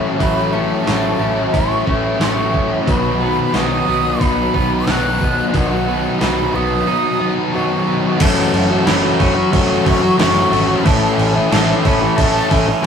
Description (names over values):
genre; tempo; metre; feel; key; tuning
rock, shoegaze and dream pop; 90 BPM; 4/4; straight; unclear; A4 = 440 Hz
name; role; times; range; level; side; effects
breathy jazz flute; melody; 0.0-12.9 s; F#5 to F#6; -22 LUFS; right 2 dB; none
twelve-string electric guitar; arpeggios; 0.0-12.9 s; E3 to E4; -24 LUFS; right 2 dB; digital delay
biting overdriven guitar; riff; 0.0-12.9 s; A2 to A4; -18 LUFS; left 4 dB; none
biting overdriven guitar; riff; 0.0-12.9 s; A2 to A4; -21 LUFS; right 4 dB; none
vintage muted picked electric bass; bass; 0.0-12.7 s; F#1 to B1; -25 LUFS; equal; none
gated 80s digital drum machine; drums; 0.2-12.7 s; crash cymbal, hi-hat, kick drum, snare drum; -19 LUFS; right 1 dB; gated reverb, gated reverb snare
room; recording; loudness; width
wet studio reverb, RT60 0.5 s; rough rehearsal-room recording; -13 LUFS; side -7 dB against mid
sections
0.0-8.2 A section; 8.2-12.9 B section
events
none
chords
0.0 A6; 2.9 B; 8.2 F#m7; 10.9 A